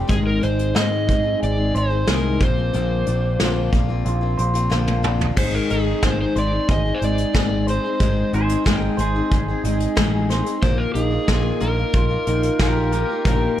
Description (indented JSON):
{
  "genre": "folk rock and heartland rock",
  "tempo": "91 BPM",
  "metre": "4/4",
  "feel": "straight",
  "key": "unclear",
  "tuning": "A4 = 440 Hz",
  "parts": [
    { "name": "picked steel-string acoustic guitar", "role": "accompaniment", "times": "0.0-13.6 s", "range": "Ab2 to Bb4", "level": "-25 LUFS", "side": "left 6 dB", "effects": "none" },
    { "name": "electric guitar through a small old amp", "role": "riff", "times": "0.0-13.6 s", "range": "Bb2 to C5", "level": "-27 LUFS", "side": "right 2 dB", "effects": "spring reverb" },
    { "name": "picked electric bass", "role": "bass", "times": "0.0-13.5 s", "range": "Ab1 to Ab2", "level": "-22 LUFS", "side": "equal", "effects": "none" },
    { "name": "overdriven slide guitar", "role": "melody", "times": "0.1-13.6 s", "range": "Ab4 to Eb5", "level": "-25 LUFS", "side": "equal", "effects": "none" },
    { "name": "soft brush drum kit", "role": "drums", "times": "0.1-13.4 s", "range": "crash cymbal, hi-hat, kick drum, snare drum, toms", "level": "-22 LUFS", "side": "equal", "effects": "none" },
    { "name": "pedal steel guitar", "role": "second line", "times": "8.3-13.6 s", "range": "G4 to G5", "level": "-29 LUFS", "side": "right 1 dB", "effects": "none" }
  ],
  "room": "small room ambience",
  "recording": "dark, warm production",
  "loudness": "-17 LUFS",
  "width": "side -12 dB against mid",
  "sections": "0.0-5.4 A section; 5.4-13.6 B section",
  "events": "drum fill 4.7-5.4",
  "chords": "0.1 Ab; 2.4 Bbadd9; 5.4 Ab; 10.6 Bbsus4"
}